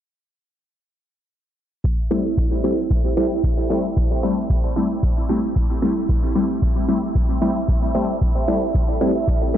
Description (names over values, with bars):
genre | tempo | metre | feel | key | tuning
dub techno | 113 BPM | 4/4 | straight | A minor | A4 = 440 Hz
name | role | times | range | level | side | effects
electronic kick drum | drums | 1.8-9.4 s | none | -20 LUFS | equal | none
bubbling stepped-filter texture | texture | 3.9-9.6 s | E5 | -33 LUFS | right 6 dB | chorus, built-in reverb, sidechain pumping
resonant sweep polysynth | stabs | 2.1-9.6 s | G3 to E4 | -20 LUFS | equal | chorus, phaser, sidechain pumping, dub echo
electronic hi-hat | drums | 2.1-9.6 s | none | -52 LUFS | equal | none
room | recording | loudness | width
moderate echo chamber reverb, RT60 2.1 s | dense, heavily limited modern master, low-pass filter | -18 LUFS | side -11 dB against mid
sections
1.8-9.6 A section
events
filter sweep on analog polysynth 1.8-9.6; filter sweep 1.8-9.6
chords
1.8 Am7